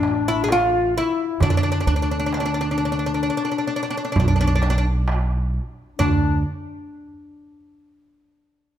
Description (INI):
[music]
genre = Turkish makam ensemble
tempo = 131 BPM (eighths)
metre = 10/8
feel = straight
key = D makam nikriz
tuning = A4 = 440 Hz
[part]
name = oud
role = melody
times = 0.0-6.4 s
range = D4 to G#4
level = -24 LUFS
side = right 1 dB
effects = none
[part]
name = dark clarinet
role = second line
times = 0.0-6.4 s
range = D4 to F4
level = -26 LUFS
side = left 9 dB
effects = none
[part]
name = upright bass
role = bass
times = 0.0-6.4 s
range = A1 to D3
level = -22 LUFS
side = right 1 dB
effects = none
[part]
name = darbuka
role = percussion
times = 0.0-6.4 s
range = none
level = -24 LUFS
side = right 3 dB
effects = none
[sound]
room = moderate recital hall reverb, RT60 1.6 s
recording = none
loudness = -19 LUFS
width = side -10 dB against mid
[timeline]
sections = 0.0-6.0 A section; 6.0-8.8 B section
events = none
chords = none